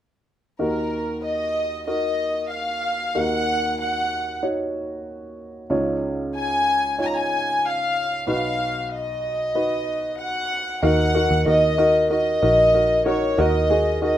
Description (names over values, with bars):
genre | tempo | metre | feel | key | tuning
pop | 94 BPM | 4/4 | straight | Eb minor | A4 = 440 Hz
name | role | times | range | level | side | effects
warm chamber violin section | melody | 0.6-14.2 s | Bb4 to Bb5 | -21 LUFS | left 1 dB | slapback echo
warm baby grand piano | accompaniment | 0.6-14.2 s | B1 to Db5 | -24 LUFS | equal | none
vintage muted picked electric bass | bass | 10.8-14.2 s | Bb1 to Eb2 | -24 LUFS | right 1 dB | none
room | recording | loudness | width
moderate studio reverb, RT60 0.6 s | rough home demo mix | -19 LUFS | side -11 dB against mid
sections
0.6-10.8 A section; 10.8-14.2 B section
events
none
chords
0.6 Ebm; 5.7 Dbadd9; 8.3 B; 10.8 Ebm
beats
| 0.60 1.24 1.88 2.52 | 3.15 3.79 4.43 5.07 | 5.71 6.35 6.99 7.63 | 8.27 8.91 9.55 10.19 | 10.82 11.46 12.10 12.74 | 13.38 14.02